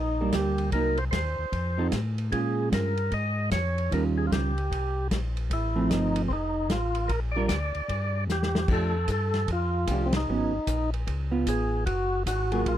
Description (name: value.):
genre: soul jazz organ trio.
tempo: 151 BPM.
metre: 4/4.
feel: swing 64% on 8ths.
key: unclear.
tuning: A4 = 439 Hz.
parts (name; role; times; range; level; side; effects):
percussive tonewheel organ; melody; 0.0-12.8 s; C4 to Eb5; -29 LUFS; equal; slow rotary speaker.
mellow tonewheel organ; bass; 0.0-12.8 s; F1 to Bb2; -29 LUFS; left 1 dB; slow rotary speaker.
vintage hollow-body jazz guitar; accompaniment; 0.2-12.8 s; Eb3 to Bb4; -28 LUFS; right 3 dB; none.
warm soul drum kit; drums; 0.3-12.8 s; crash cymbal, hi-hat, kick drum, ride cymbal, snare drum; -32 LUFS; equal; none.
room: little or no reverb.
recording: none.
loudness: -24 LUFS.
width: side -11 dB against mid.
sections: 0.0-8.7 A section; 8.7-12.8 B section.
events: drum fill 8.3-8.7; band accent 10.1.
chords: 0.0 Ebmaj7; 0.7 Cm7b5; 1.5 F7; 2.3 Bbm7; 3.9 Eb9; 5.5 Fmaj7; 7.1 Gm7; 7.9 Em7; 8.7 F69; 10.3 Abm11; 11.1 Db7b13; 11.9 Gbmaj9.